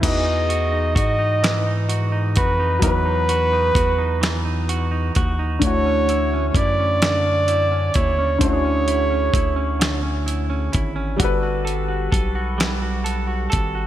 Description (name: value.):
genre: slow six-eight R&B.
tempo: 43 BPM (dotted quarters).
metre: 6/8.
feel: straight.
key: E major.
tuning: A4 = 439 Hz.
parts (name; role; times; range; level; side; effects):
semi-hollow electric guitar; second line; 0.0-13.9 s; B2 to A4; -27 LUFS; right 4 dB; spring reverb, ping-pong delay.
warm concert grand piano; accompaniment; 0.0-13.9 s; D3 to B4; -27 LUFS; left 4 dB; analog chorus.
round analog bass; bass; 0.0-13.9 s; G1 to G#2; -23 LUFS; equal; none.
dusty soul sampler-style drum kit; drums; 0.0-13.7 s; crash cymbal, hi-hat, kick drum, snare drum; -22 LUFS; equal; none.
warm flugelhorn; melody; 0.1-10.2 s; B4 to D#5; -21 LUFS; right 1 dB; none.
room: light reverb, digital ambience.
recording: bright 1980s-style digital production.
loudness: -17 LUFS.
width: side -12 dB against mid.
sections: 0.0-13.9 A section.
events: none.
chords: 0.0 Emaj9; 5.6 Dmaj9; 11.2 Gmaj9.